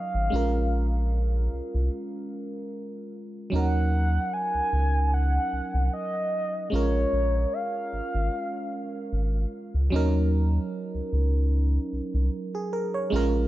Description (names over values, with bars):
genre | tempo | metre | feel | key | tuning
contemporary R&B | 75 BPM | 4/4 | swing 54% on 16ths | Eb minor | A4 = 440 Hz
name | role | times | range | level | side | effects
mellow horn-like synth lead | melody | 0.0-9.5 s | Db5 to Ab5 | -30 LUFS | equal | chorus, ping-pong delay
FM electric piano | accompaniment | 0.0-13.5 s | Gb3 to Db5 | -30 LUFS | right 2 dB | chorus
round analog bass | bass | 0.1-13.5 s | Ab1 to Eb2 | -24 LUFS | equal | none
room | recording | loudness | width
little or no reverb | dark, warm production | -24 LUFS | side -15 dB against mid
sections
0.0-3.5 A section; 3.5-13.5 B section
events
break 1.9-3.5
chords
0.3 Bbm7; 3.5 Ebm7; 6.7 Bbm7; 9.9 Ebm7